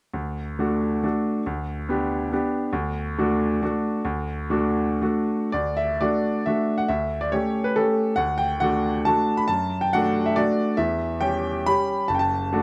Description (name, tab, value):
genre	classical, romantic triple-time dance for piano with dotted rhythms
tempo	110-151 BPM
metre	3/4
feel	rubato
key	D major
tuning	A4 = 440 Hz
part	bright baby grand piano	solo	0.1-12.6 s	F#1 to B5	-24 LUFS	equal	none
room	moderate recital hall reverb, RT60 1.6 s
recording	close, detailed microphones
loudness	-24 LUFS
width	mono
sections	0.1-5.5 A section; 5.5-12.6 B section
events	none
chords	0.1 D; 1.5 G/D; 2.7 D; 6.9 A7/D; 8.2 D; 9.5 D/F#; 10.8 C#dim/E; 12.1 D/F#